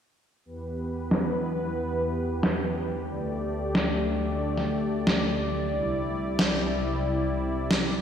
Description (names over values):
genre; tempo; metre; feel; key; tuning
synthwave; 91 BPM; 4/4; straight; E minor; A4 = 440 Hz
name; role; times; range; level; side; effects
warm analog pad; sustained chords; 0.5-8.0 s; C2 to D5; -27 LUFS; equal; chorus
electronic snare drum; drums; 1.1-7.8 s; none; -28 LUFS; equal; gated reverb, gated reverb snare, overdrive, low-pass filter on snare, low-pass filter on room
room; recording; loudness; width
wet lush hall reverb, RT60 2.6 s; bright 1980s-style digital production; -25 LUFS; side -8 dB against mid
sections
0.5-8.0 A section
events
filter sweep on drum 0.5-8.0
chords
0.5 Em; 3.1 Gsus2/D; 5.7 Cadd9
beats
| 0.45 1.11 1.77 2.43 | 3.09 3.75 4.41 5.07 | 5.73 6.39 7.05 7.71